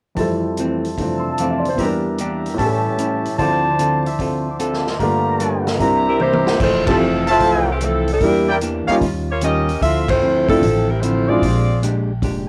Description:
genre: jazz, big band swing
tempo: 149 BPM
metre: 4/4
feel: swing 67% on 8ths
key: F major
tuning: A4 = 440 Hz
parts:
  - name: warm grand piano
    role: accompaniment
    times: 0.1-11.4 s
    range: C2 to C6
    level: -23 LUFS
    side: equal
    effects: none
  - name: hollow-body jazz guitar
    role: accompaniment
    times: 0.2-12.5 s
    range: F2 to Bb4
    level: -26 LUFS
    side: equal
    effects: none
  - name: mellow trumpet section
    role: stabs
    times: 0.2-9.0 s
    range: Eb4 to E6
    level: -23 LUFS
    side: equal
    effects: none
  - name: swinging big-band drum kit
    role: drums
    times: 0.2-12.3 s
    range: crash cymbal, hi-hat, kick drum, ride cymbal, snare drum, toms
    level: -28 LUFS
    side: equal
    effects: cassette tape
  - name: warm saxophone section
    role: melody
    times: 6.1-11.8 s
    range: E3 to E5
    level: -21 LUFS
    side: equal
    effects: cassette tape
  - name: upright bass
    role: bass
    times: 6.6-12.5 s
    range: F1 to E2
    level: -24 LUFS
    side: equal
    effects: none
room: moderate small room reverb, RT60 0.5 s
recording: home recording on cassette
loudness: -18 LUFS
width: mono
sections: 0.2-6.6 A section; 6.6-12.5 B section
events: drum fill 6.2-6.6; band accent 6.8, 10.0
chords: 0.2 Fmaj7; 1.8 Em7b5; 2.6 A7; 3.4 Dm7; 5.0 Gm7; 5.8 C7; 6.6 Fmaj7; 8.2 Em7b5; 9.0 Eb9; 9.8 Dm9; 11.4 Bb13

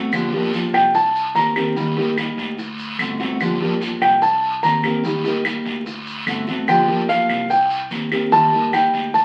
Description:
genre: latin, Cuban son and guajira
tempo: 146 BPM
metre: 4/4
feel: straight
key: G minor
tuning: A4 = 440 Hz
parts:
  - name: fingerpicked steel-string acoustic guitar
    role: accompaniment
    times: 0.0-9.2 s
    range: D3 to G4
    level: -24 LUFS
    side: equal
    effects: none
  - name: upright bass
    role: bass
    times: 0.0-9.2 s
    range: G1 to Eb2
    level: -36 LUFS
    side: equal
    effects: none
  - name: claves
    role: percussion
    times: 0.1-8.9 s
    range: none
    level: -28 LUFS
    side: equal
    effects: none
  - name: guiro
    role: percussion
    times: 0.1-9.2 s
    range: none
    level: -32 LUFS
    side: equal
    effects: none
  - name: maracas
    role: percussion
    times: 0.1-9.2 s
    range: none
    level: -40 LUFS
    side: equal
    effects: none
  - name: warm concert grand piano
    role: arpeggios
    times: 0.7-9.2 s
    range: F5 to Bb5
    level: -18 LUFS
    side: equal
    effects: none
room: wet studio reverb, RT60 0.7 s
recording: very old 78 rpm record, vinyl crackle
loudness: -19 LUFS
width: mono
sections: 0.0-9.2 A section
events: grand piano solo 0.0-9.2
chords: 0.1 Gm7; 0.9 Cm7; 1.8 Eb; 2.6 D7; 3.4 Gm7; 4.2 Cm7; 5.0 Eb; 5.9 D7; 6.7 Gm7; 7.5 Cm7; 8.3 Eb

